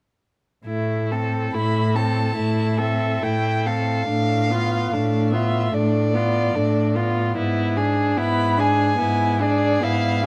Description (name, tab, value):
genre	classical, slow romantic movement for string quartet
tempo	72 BPM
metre	4/4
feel	rubato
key	A minor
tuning	A4 = 440 Hz
part	muted violin	second line	0.7-10.3 s	D4 to A4	-27 LUFS	equal	none
part	muted viola	accompaniment	0.7-10.3 s	A3 to D4	-28 LUFS	equal	none
part	muted cello	bass	0.7-10.3 s	G#2 to A2	-26 LUFS	equal	none
part	muted violin	melody	1.5-10.3 s	D5 to B5	-27 LUFS	equal	none
room	light reverb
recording	close, detailed microphones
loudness	-21 LUFS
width	mono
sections	0.7-10.3 A section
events	none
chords	0.7 Am; 4.1 Bm7b5/A; 7.4 E7/G#